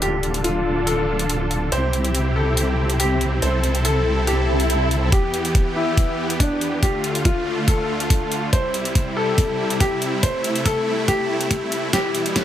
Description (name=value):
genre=heavy wobble dubstep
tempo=141 BPM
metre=4/4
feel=half-time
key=E phrygian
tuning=A4 = 439 Hz
part: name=bright grand piano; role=melody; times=0.0-12.4 s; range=D4 to C5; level=-24 LUFS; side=left 1 dB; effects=low-pass filter, tape echo
part: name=supersaw chords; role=sustained chords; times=0.0-12.4 s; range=C2 to A4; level=-24 LUFS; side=equal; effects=sidechain pumping, low-pass filter
part: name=wobble bass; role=bass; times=0.0-5.1 s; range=D1 to C2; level=-21 LUFS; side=equal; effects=chorus, overdrive
part: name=big-room dance drum kit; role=drums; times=0.0-12.4 s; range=hi-hat, snare drum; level=-26 LUFS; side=equal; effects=none
part: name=swell and riser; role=sound effects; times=4.4-5.1, 12.3-12.4 s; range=none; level=-28 LUFS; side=equal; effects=none
part: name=electronic kick drum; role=drums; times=5.1-12.4 s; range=none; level=-19 LUFS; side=equal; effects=none
room=light reverb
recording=high-pass filter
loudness=-18 LUFS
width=side -11 dB against mid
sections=0.0-5.1 A section; 5.1-12.4 B section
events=filter sweep on supersaw synth 0.0-5.1; swell 4.4-5.1; build-up 5.1-12.4; filter sweep on grand piano 5.1-12.4; filter sweep 5.1-12.4; drum fill 11.9-12.4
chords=0.0 Dm; 1.7 C; 3.4 Am/C; 5.1 Em; 6.8 Dm; 8.5 C; 10.2 Am/C; 11.9 Em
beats=| 0.02 0.44 0.87 1.29 | 1.72 2.15 2.57 3.00 | 3.42 3.85 4.27 4.70 | 5.12 5.55 5.97 6.40 | 6.83 7.25 7.68 8.10 | 8.53 8.95 9.38 9.80 | 10.23 10.66 11.08 11.51 | 11.93 12.36